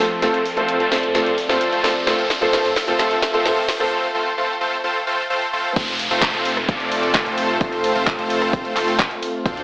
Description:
EDM, festival progressive house; 130 BPM; 4/4; straight; F major; A4 = 440 Hz
dark grand piano; accompaniment; 0.0-3.9 s; F3 to A4; -22 LUFS; equal; sidechain pumping, dub echo
lush unison pad; sustained chords; 0.0-9.6 s; D2 to E5; -27 LUFS; equal; chorus, sidechain pumping
supersaw chords; riff; 0.0-9.6 s; A3 to D5; -20 LUFS; equal; sidechain pumping, low-pass filter, dub echo
riser and downlifter; sound effects; 0.1-9.5 s; -27 LUFS; equal
house drum kit; drums; 0.2-9.6 s; crash cymbal, handclaps, hi-hat, ride cymbal, rim click, snare drum; -23 LUFS; equal; high-pass filter on hats, high-pass filter on snare, high-pass filter on cymbals, high-pass filter on room
saturated sub bass; bass; 5.8-9.6 s; F1 to D2; -36 LUFS; equal; sidechain pumping
electronic kick drum; drums; 5.8-9.5 s; -23 LUFS; equal
wet lush hall reverb, RT60 2.0 s; high-pass filter, AM radio sound; -17 LUFS; side -22 dB against mid
0.0-5.8 A section; 5.8-9.6 B section
build-up 0.0-5.8; drum fill 0.0-3.9; filter sweep on analog synth pad 0.0-5.8; riser 0.1-3.9; break 3.9-5.8; drop 5.8-9.6
0.0 F; 2.1 Dm7; 3.9 F/A; 5.8 F
| 0.23 0.69 1.15 1.61 | 2.07 2.53 2.99 3.46 | 3.92 4.38 4.84 5.30 | 5.76 6.22 6.69 7.15 | 7.61 8.07 8.53 8.99 | 9.46

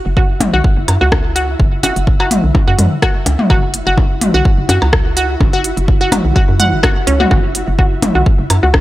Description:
minimal techno; 126 BPM; 4/4; swing 54% on 16ths; A4 = 440 Hz
flickering grainy texture; texture; 0.0-8.8 s; E4 to E5; -25 LUFS; right 1 dB; built-in reverb, sidechain pumping
hollow knocking FM bass; bass; 0.1-8.8 s; F#1 to F#2; -17 LUFS; equal; sidechain pumping
resonant blip pluck; riff; 0.2-8.7 s; C#4 to F#5; -18 LUFS; right 1 dB; chorus, sidechain pumping, analog delay
electronic kick drum; drums; 0.2-8.8 s; -13 LUFS; equal
minimal click drum kit; drums; 0.4-8.8 s; hi-hat, rim click; -18 LUFS; equal; overdrive
electronic toms and percussion blips; percussion; 0.4-8.8 s; -18 LUFS; left 1 dB; overdrive, analog delay
digital ambience; dry, gritty hardware recording, transformer saturation; -11 LUFS; side -16 dB against mid
0.0-8.8 A section
0.0 F#5
0.17 0.64 1.12 | 1.60 2.07 2.55 3.02 | 3.50 3.98 4.45 4.93 | 5.41 5.88 6.36 6.83 | 7.31 7.79 8.26 8.74

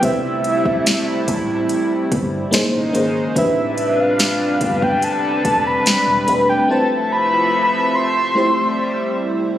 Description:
contemporary R&B; 72 BPM; 4/4; straight; A minor; A4 = 440 Hz
soft octave-layered synth lead; melody; 0.0-9.2 s; E5 to C6; -18 LUFS; equal; chorus, digital delay
FM electric piano with soft pad layer; accompaniment; 0.0-9.6 s; A3 to C5; -21 LUFS; equal; chorus
chorused pulse-width pad; sustained chords; 0.0-9.6 s; C3 to E5; -22 LUFS; equal
vintage muted fingered electric bass; bass; 0.0-6.6 s; E1 to C2; -28 LUFS; equal
smooth R&B drum kit; drums; 0.0-6.5 s; hi-hat, kick drum, snare drum; -20 LUFS; equal
light reverb; recorded on a phone in the room, studio reverb; -15 LUFS; side -12 dB against mid
0.0-9.6 A section
drums muted 6.7-9.6
0.0 C6; 2.5 Bbm11; 3.4 Am11; 6.7 Fmaj7; 8.4 Am7
| 0.03 0.86 1.69 2.53 | 3.36 4.19 5.03 5.86 | 6.69 7.53 8.36 9.19

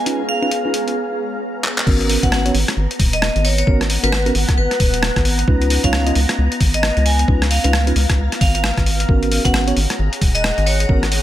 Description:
UK garage, two-step garage; 133 BPM; 4/4; swing 61% on 16ths; G# dorian; A4 = 440 Hz
soft string machine; sustained chords; 0.0-11.2 s; B3 to A#5; -27 LUFS; equal; ensemble chorus, sidechain pumping
granular cloud pad; texture; 0.0-11.2 s; G#4 to F#5; -28 LUFS; equal; built-in reverb, sidechain pumping
mellow tine electric piano; stabs; 0.1-11.0 s; B3 to D#5; -22 LUFS; right 1 dB; slow stereo tremolo, tape echo
boom bap sampler-style drum kit; drums; 0.1-11.2 s; crash cymbal, handclaps, hi-hat, rim click; -21 LUFS; left 1 dB
vibraphone with hard mallets; melody; 0.3-10.9 s; B4 to G#5; -23 LUFS; equal; tape echo
rubbery square bass; bass; 1.9-11.2 s; D#1 to C#2; -18 LUFS; equal
electronic kick drum; drums; 1.9-11.0 s; -16 LUFS; equal
light reverb; -14 LUFS; side -13 dB against mid
0.0-1.9 A section; 1.9-11.2 B section
break 1.0-1.9; drum fill 1.6; drop 1.9-11.2
0.0 C#9; 1.9 G#m11; 5.5 C#9; 9.1 G#m11
| 0.06 0.52 0.97 1.42 | 1.87 2.32 2.77 3.22 | 3.67 4.12 4.58 5.03 | 5.48 5.93 6.38 6.83 | 7.28 7.73 8.18 8.63 | 9.09 9.54 9.99 10.44 | 10.89

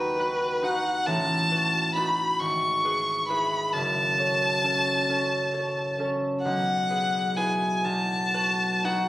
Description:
classical, romantic duo for violin and harp; 39-46 BPM (dotted quarters); 6/8; rubato; E major; A4 = 440 Hz
warm violin; melody; 0.0-9.1 s; B4 to C#6; -24 LUFS; equal
concert harp; accompaniment; 0.0-9.1 s; F#1 to C#5; -28 LUFS; equal
moderate recital hall reverb, RT60 1.5 s; recorded on a phone in the room, studio reverb, compression; -23 LUFS; side -15 dB against mid
0.0-9.1 A section
0.0 B/D#; 1.1 B7/A; 2.4 E/G#; 3.7 F#m; 6.4 E/B; 7.8 B7
| 1.06 2.40 | 3.73 5.09 | 6.44 7.84

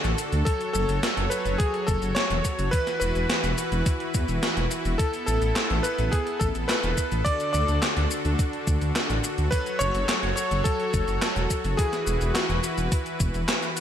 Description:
synthwave; 106 BPM; 4/4; straight; A4 = 440 Hz
soft supersaw; sustained chords; 0.0-13.8 s; D3 to C#5; -30 LUFS; equal; sidechain pumping
dark detuned saw bass; bass; 0.0-13.4 s; E1 to E2; -26 LUFS; equal
gated 80s digital drum machine; drums; 0.0-13.8 s; handclaps, hi-hat, shaker, snare drum; -29 LUFS; equal; gated reverb, gated reverb snare, studio reverb
downlifter; sound effects; 0.0-0.5 s; barely audible
bright electric grand piano; melody; 0.5-12.9 s; F#4 to D5; -28 LUFS; left 1 dB; ping-pong delay
electronic kick drum; drums; 0.5-13.3 s; -25 LUFS; equal; studio reverb
light reverb; -22 LUFS; side -9 dB against mid
0.0-13.8 A section
0.5 F#m; 2.7 Esus2; 5.0 Asus2; 7.3 D; 9.5 F#m; 11.8 Esus2
| 0.47 1.03 1.60 2.16 | 2.73 3.30 3.86 4.43 | 4.99 5.56 6.13 6.69 | 7.26 7.83 8.39 8.96 | 9.52 10.09 10.65 11.22 | 11.79 12.35 12.92 13.48

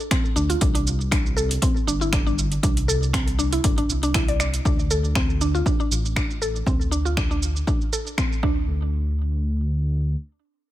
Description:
afro house; 119 BPM; 4/4; swing 54% on 16ths; D minor; A4 = 439 Hz
afro-pop drum kit; drums; 0.0-8.4 s; finger snaps, hi-hat, shaker; -28 LUFS; right 2 dB; small room reverb
mallet-like synth pluck; arpeggios; 0.1-8.9 s; C4 to D5; -26 LUFS; equal; chorus, sidechain pumping, digital delay
electronic kick drum; drums; 0.1-8.5 s; -24 LUFS; equal; small room reverb
dark detuned saw bass; bass; 0.4-10.2 s; G1 to D2; -24 LUFS; equal; sidechain pumping
little or no reverb; -20 LUFS; side -14 dB against mid
0.0-4.6 A section; 4.6-8.7 B section; 8.7-10.7 C section
0.0 Dm7; 0.6 C5; 4.6 D5; 8.4 N.C.
0.11 | 0.61 1.12 1.62 2.13 | 2.63 3.14 3.64 4.14 | 4.65 5.15 5.66 6.16 | 6.67 7.17 7.67 8.18 | 8.68 9.19 9.69

